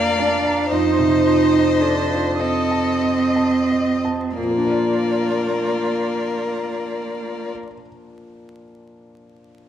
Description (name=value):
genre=classical, slow romantic movement for piano quintet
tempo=28-41 BPM (dotted quarters)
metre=12/8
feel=rubato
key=Bb major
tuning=A4 = 439 Hz
part: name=rich violin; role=melody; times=0.0-7.5 s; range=A4 to D5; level=-26 LUFS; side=left 6 dB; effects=none
part: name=clear violin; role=second line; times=0.0-7.5 s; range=Bb4 to F5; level=-28 LUFS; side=left 3 dB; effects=none
part: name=rich cello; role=second line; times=0.0-7.5 s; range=Bb3 to Eb4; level=-20 LUFS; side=right 4 dB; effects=none
part: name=clear viola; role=accompaniment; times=0.0-7.5 s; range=F4 to Eb5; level=-27 LUFS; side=equal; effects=none
part: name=warm concert grand piano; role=accompaniment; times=0.0-9.7 s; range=F2 to Bb5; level=-24 LUFS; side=left 2 dB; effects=none
room=wet recital hall reverb, RT60 1.5 s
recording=vinyl crackle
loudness=-17 LUFS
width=side -10 dB against mid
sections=0.0-4.4 A section; 4.4-9.7 B section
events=slowing down 0.0-4.4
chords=0.0 Bb/F; 0.7 F7; 4.4 Bb